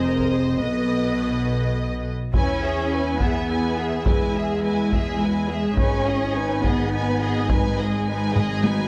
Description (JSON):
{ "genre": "cinematic, epic orchestral film score", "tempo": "70 BPM (dotted quarters)", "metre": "6/8", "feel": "straight", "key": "unclear", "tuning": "A4 = 437 Hz", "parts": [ { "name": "warm symphonic violin section", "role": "melody", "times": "0.0-8.9 s", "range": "Eb5 to G#5", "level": "-35 LUFS", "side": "equal", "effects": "none" }, { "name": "warm symphonic violin section", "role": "second line", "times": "0.0-8.9 s", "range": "G#4 to D#5", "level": "-34 LUFS", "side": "equal", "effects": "none" }, { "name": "warm symphonic viola section", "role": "accompaniment", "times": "0.0-8.9 s", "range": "D#4 to C5", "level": "-36 LUFS", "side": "equal", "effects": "none" }, { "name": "dark French horn section", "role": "sustained chords", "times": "0.0-8.9 s", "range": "B3 to G#4", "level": "-30 LUFS", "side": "equal", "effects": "none" }, { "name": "rich symphonic double bass section", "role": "bass", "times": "0.0-8.9 s", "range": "F1 to E2", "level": "-30 LUFS", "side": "equal", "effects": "none" }, { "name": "warm studio cello section", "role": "bass", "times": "0.0-8.9 s", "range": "F2 to C#4", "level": "-28 LUFS", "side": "equal", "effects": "none" }, { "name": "solo taiko drums", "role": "drums", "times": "0.2-8.9 s", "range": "none", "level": "-26 LUFS", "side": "equal", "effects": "none" } ], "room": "light reverb", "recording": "close, detailed microphones", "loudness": "-22 LUFS", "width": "mono", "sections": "0.0-2.3 A section; 2.3-8.9 B section", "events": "drum fill 8.4-8.9", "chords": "0.0 Fm7; 0.6 B7; 2.3 E; 5.8 G#m", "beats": "| 0.62 1.48 | 2.34 3.20 | 4.06 4.92 | 5.78 6.64 | 7.50 8.36" }